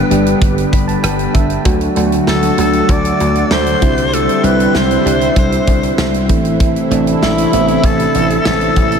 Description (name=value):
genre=1980s-style pop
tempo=97 BPM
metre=4/4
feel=straight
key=D mixolydian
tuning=A4 = 440 Hz
part: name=raspy alto saxophone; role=melody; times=0.0-9.0 s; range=E4 to D5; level=-18 LUFS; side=left 2 dB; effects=ping-pong delay
part: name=soft electric-piano-like synth keys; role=accompaniment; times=0.0-9.0 s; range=E3 to B5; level=-16 LUFS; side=right 1 dB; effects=chorus
part: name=lush unison pad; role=sustained chords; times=0.0-9.0 s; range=C3 to G4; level=-19 LUFS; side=equal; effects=chorus, phaser, tremolo
part: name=dry thumbed slap bass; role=bass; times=0.1-9.0 s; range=G1 to D2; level=-19 LUFS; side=equal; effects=none
part: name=modern studio drum kit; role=drums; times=0.1-9.0 s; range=hi-hat, kick drum, rim click, snare drum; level=-17 LUFS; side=equal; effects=none
room=wet huge ambient reverb, RT60 8.0 s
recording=dreamy mix soaked in reverb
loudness=-11 LUFS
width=side -6 dB against mid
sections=0.0-9.0 A section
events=synth keys fill 0.4-1.7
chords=0.0 G; 1.7 D; 3.8 Cadd9; 6.3 Am